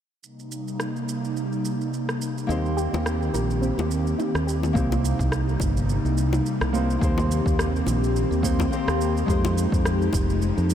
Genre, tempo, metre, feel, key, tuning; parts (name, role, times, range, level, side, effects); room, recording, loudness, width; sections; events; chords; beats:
sunset chillout; 106 BPM; 4/4; swing 56% on 16ths; A4 = 440 Hz
airy breathy pad; sustained chords; 0.2-10.7 s; C3 to G4; -27 LUFS; equal; chorus
electronic shaker and rim click; drums; 0.2-10.7 s; -34 LUFS; right 1 dB; overdrive, studio reverb
nylon-string guitar; accompaniment; 2.5-10.7 s; Ab3 to C5; -30 LUFS; equal; auto-pan, low-pass filter, tape echo
soft round pluck; arpeggios; 2.5-4.6 s; C4 to Bb4; -34 LUFS; right 3 dB
modern bright fingered electric bass; bass; 2.5-10.7 s; F1 to F2; -24 LUFS; equal
bongos; percussion; 2.9-10.3 s; -36 LUFS; left 5 dB
electronic kick drum; drums; 4.8-10.3 s; -26 LUFS; equal; overdrive, studio reverb
moderate huge ambient reverb, RT60 8.0 s; dreamy mix soaked in reverb; -21 LUFS; side -10 dB against mid
0.2-4.8 A section; 4.8-10.7 B section
0.2 Cm7; 2.5 Eb6; 4.8 Cm7; 7.0 Eb6; 9.3 Fm9
| 0.23 0.79 1.36 1.93 | 2.49 3.06 3.62 4.19 | 4.75 5.32 5.89 6.45 | 7.02 7.59 8.15 8.72 | 9.28 9.85 10.42